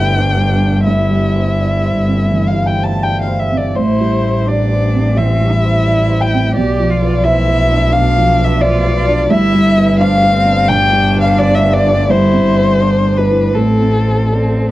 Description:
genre	neoclassical piano and strings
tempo	86 BPM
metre	4/4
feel	rubato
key	A minor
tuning	A4 = 440 Hz
part	warm violin	melody	0.0-14.7 s	A4 to A5	-17 LUFS	left 2 dB	none
part	rich cello	second line	0.0-14.7 s	C4 to G4	-22 LUFS	right 4 dB	none
part	felt-muted upright piano	accompaniment	0.0-14.7 s	B1 to A5	-15 LUFS	right 1 dB	none
part	warm double bass	bass	0.0-14.7 s	G1 to B1	-15 LUFS	equal	none
room	light reverb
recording	worn, warbling old tape, cassette tape, warbly pitch drift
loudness	-11 LUFS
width	side -16 dB against mid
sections	0.0-14.7 A section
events	none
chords	0.0 G; 0.9 C/G; 3.8 Am7; 6.6 Bdim; 9.3 G; 12.1 C/G; 13.6 Am

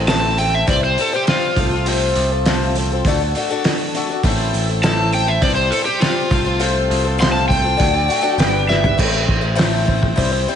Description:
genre	folk rock and heartland rock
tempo	101 BPM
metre	4/4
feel	straight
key	A minor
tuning	A4 = 443 Hz
part	picked twelve-string acoustic guitar	accompaniment	0.0-10.6 s	A2 to C5	-20 LUFS	left 5 dB	slapback echo
part	modern bright picked electric bass	bass	0.0-10.5 s	G1 to D2	-20 LUFS	right 1 dB	none
part	overdriven slide guitar	melody	0.1-9.0 s	F4 to C6	-20 LUFS	right 1 dB	slapback echo, analog delay
part	cloth-damped thuddy drum kit	drums	0.1-10.3 s	crash cymbal, hi-hat, kick drum, snare drum, toms	-20 LUFS	right 1 dB	none
part	bright tonewheel organ	sustained chords	4.2-9.0 s	F#3 to E5	-31 LUFS	right 2 dB	none
room	moderate lush hall reverb, RT60 2.7 s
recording	big arena sound, nothing above 10.4 kHz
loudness	-14 LUFS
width	side -8 dB against mid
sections	0.0-9.0 A section; 9.0-10.6 B section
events	electric slide guitar solo 0.0-9.0; drum fill 8.7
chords	0.0 Am; 0.7 C; 1.6 F/C; 3.0 D; 4.2 Am; 5.4 C; 6.3 F/C; 7.8 D; 8.4 G; 9.0 Am

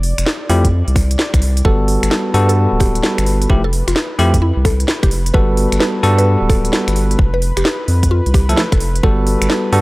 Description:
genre	UK garage, two-step garage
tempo	130 BPM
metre	4/4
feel	swing 65% on 16ths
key	unclear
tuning	A4 = 440 Hz
part	warm analog pad	sustained chords	0.0-9.8 s	B4 to D5	-29 LUFS	left 1 dB	chorus, sidechain pumping
part	saturated sub bass	bass	0.0-9.8 s	D1 to G2	-15 LUFS	equal	none
part	garage drum kit	drums	0.0-9.8 s	finger snaps, hi-hat, snare drum	-20 LUFS	equal	none
part	bell-like tine electric piano	stabs	0.5-9.8 s	F3 to A4	-17 LUFS	equal	medium stereo tremolo, vintage 12-bit sampler grit, low-pass filter
part	electronic kick drum	drums	0.6-9.2 s	none	-14 LUFS	equal	none
part	mallet-like synth pluck	melody	1.6-9.7 s	E4 to B4	-24 LUFS	equal	chorus, phaser, tape echo
room	digital ambience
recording	dry, gritty hardware recording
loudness	-12 LUFS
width	side -21 dB against mid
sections	0.0-9.8 A section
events	none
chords	0.0 F5; 1.6 Gmaj9; 3.5 Fmaj9; 5.3 Gmaj9; 7.2 F; 9.0 Gmaj9

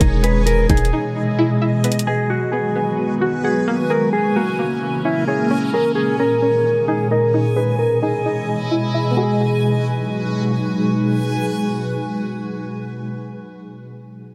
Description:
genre	hip hop, atmospheric cloud-rap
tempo	131 BPM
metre	4/4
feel	half-time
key	G# minor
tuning	A4 = 440 Hz
part	ethereal airy pad	sustained chords	0.0-12.9 s	A#2 to D#5	-23 LUFS	equal	ensemble chorus, built-in reverb, tremolo, sidechain pumping, low-pass filter
part	string-like resonator pluck	arpeggios	0.0-13.0 s	A#3 to F#5	-27 LUFS	equal	chorus, low-pass filter, analog delay
part	long sustained 808-style bass	bass	0.0-0.9 s	E1	-20 LUFS	equal	none
part	smooth R&B drum kit	drums	0.0-2.1 s	hi-hat, kick drum	-20 LUFS	equal	none
part	backwards swelling texture	texture	0.0-12.9 s	C#4 to G#5	-30 LUFS	equal	built-in reverb
part	mellow electric guitar	melody	0.2-10.5 s	E4 to B4	-23 LUFS	equal	low-pass filter, analog delay
room	light reverb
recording	echo-heavy mix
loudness	-19 LUFS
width	mono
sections	0.0-9.2 A section; 9.2-12.8 B section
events	filter sweep 0.0-9.2; break 0.9-1.8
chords	0.0 Emaj7; 1.8 G#m7; 3.7 A#m7b5; 5.5 D#7sus4; 7.3 Emaj7; 9.2 G#m7

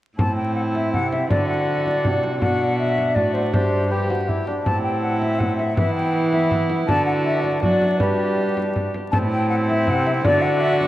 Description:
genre	classical, renaissance-style consort dance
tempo	161 BPM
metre	3/4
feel	straight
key	A dorian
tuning	A4 = 438 Hz
part	concert flute	melody	0.2-10.9 s	B4 to A5	-23 LUFS	left 2 dB	none
part	warm viola	second line	0.2-10.9 s	E4 to G4	-25 LUFS	right 2 dB	none
part	warm bassoon	accompaniment	0.2-10.9 s	B3 to G4	-26 LUFS	equal	none
part	rich cello	bass	0.2-10.9 s	G2 to G3	-24 LUFS	right 1 dB	none
part	frame drum	percussion	0.2-10.9 s	none	-26 LUFS	equal	none
room	wet cathedral reverb, RT60 5.4 s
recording	in a vast, echoing space, vinyl crackle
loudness	-18 LUFS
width	side -14 dB against mid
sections	0.2-9.1 A section; 9.1-10.9 A section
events	none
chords	0.2 Am; 1.3 D; 2.4 Bm; 3.5 G; 4.7 Am; 5.8 Em; 6.9 D; 8.0 G; 9.1 Am; 10.2 D

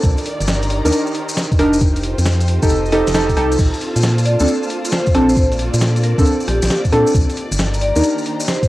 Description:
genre	UK garage, two-step garage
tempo	135 BPM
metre	4/4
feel	swing 67% on 16ths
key	Bb major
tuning	A4 = 440 Hz
part	soft string machine	sustained chords	0.0-8.7 s	Bb3 to Bb4	-28 LUFS	equal	ensemble chorus, sidechain pumping, cassette tape
part	organ-like FM bass	bass	0.0-8.0 s	F1 to Bb2	-18 LUFS	equal	none
part	boom bap sampler-style drum kit	drums	0.0-8.7 s	crash cymbal, hi-hat, rim click, snare drum	-24 LUFS	equal	cassette tape
part	electronic kick drum	drums	0.0-8.7 s	none	-16 LUFS	equal	cassette tape
part	maracas	percussion	0.0-8.7 s	none	-28 LUFS	left 2 dB	none
part	warm symphonic string section	texture	0.0-8.7 s	Eb3 to Bb5	-27 LUFS	right 1 dB	sidechain pumping, cassette tape
part	deep mellow chord stab	stabs	0.8-8.1 s	C4 to Bb4	-18 LUFS	equal	lush chorus, cassette tape, tape echo
part	vibraphone with medium hard mallets	melody	4.3-8.7 s	G4 to D5	-22 LUFS	equal	cassette tape, tape echo
room	light reverb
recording	home recording on cassette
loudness	-14 LUFS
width	side -17 dB against mid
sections	0.0-8.7 A section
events	none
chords	0.0 Cm9; 1.8 F7; 3.6 Bbmaj7; 7.1 Cm9

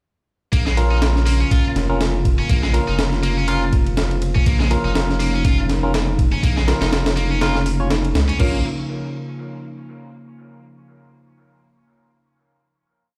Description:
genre	breakbeat, breaks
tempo	122 BPM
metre	4/4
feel	swing 56% on 16ths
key	Bb minor pentatonic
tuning	A4 = 441 Hz
part	warbly tape-like pad	sustained chords	1.1-8.6 s	Db3 to F4	-29 LUFS	equal	chorus, built-in reverb, vintage 12-bit sampler grit, sidechain pumping
part	heavy high-gain guitar	riff	0.5-8.6 s	Ab3 to F4	-30 LUFS	equal	distortion, tube saturation, dub echo
part	saturated sub bass	bass	0.5-8.6 s	F1 to Db2	-22 LUFS	equal	none
part	breakbeat sampler-style drum kit	drums	0.5-8.5 s	crash cymbal, hi-hat, kick drum, ride cymbal, snare drum	-23 LUFS	equal	none
part	overdriven tine electric piano	stabs	0.8-8.6 s	Db4 to Db5	-28 LUFS	equal	phaser, dub echo
room	light reverb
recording	played on a big sound system in a bare room, stone room reverb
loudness	-19 LUFS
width	mono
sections	0.5-8.4 drop; 8.4-10.4 final chord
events	drop 0.5-8.4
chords	0.5 Bbm

